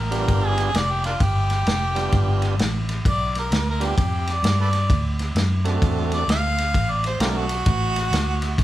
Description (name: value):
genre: electric blues shuffle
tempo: 130 BPM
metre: 4/4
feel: swing 63% on 8ths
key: G mixolydian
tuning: A4 = 440 Hz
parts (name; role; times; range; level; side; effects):
- clear harmonica; melody; 0.0-8.6 s; Bb3 to F5; -25 LUFS; right 1 dB; overdrive
- vintage muted fingered electric bass; bass; 0.0-8.6 s; F1 to G2; -23 LUFS; equal; none
- tonewheel organ; accompaniment; 0.1-7.5 s; G3 to A4; -27 LUFS; right 4 dB; overdrive
- warm soul drum kit; drums; 0.1-8.6 s; kick drum, ride cymbal, snare drum; -24 LUFS; equal; none
room: moderate large studio reverb, RT60 1.2 s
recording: band playing live in one room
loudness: -19 LUFS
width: side -14 dB against mid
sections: 0.0-8.6 A section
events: harmonica solo 0.0-8.6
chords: 0.0 G7; 4.9 D7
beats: 0.29 0.75 | 1.21 1.67 2.13 2.59 | 3.05 3.51 3.97 4.43 | 4.89 5.36 5.82 6.28 | 6.74 7.20 7.66 8.12 | 8.58